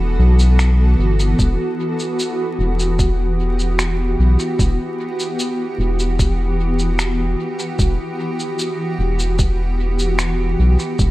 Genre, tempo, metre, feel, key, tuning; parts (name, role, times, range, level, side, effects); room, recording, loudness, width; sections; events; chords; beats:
ambient dub; 75 BPM; 4/4; straight; E minor; A4 = 440 Hz
granular cloud pad; sustained chords; 0.0-11.1 s; E3 to A4; -21 LUFS; equal; built-in reverb
round analog bass; bass; 0.0-11.1 s; E1 to B1; -16 LUFS; equal
electronic cabasa and finger snaps; drums; 0.4-11.1 s; -25 LUFS; equal; studio reverb, dub echo
electronic kick drum; drums; 1.4-11.1 s; -17 LUFS; equal; studio reverb
digital ambience; vinyl crackle; -16 LUFS; side -17 dB against mid
0.0-11.1 A section
0.0 Emadd9
0.59 | 1.39 2.19 2.99 3.79 | 4.59 5.39 6.19 6.99 | 7.79 8.59 9.39 10.19 | 10.99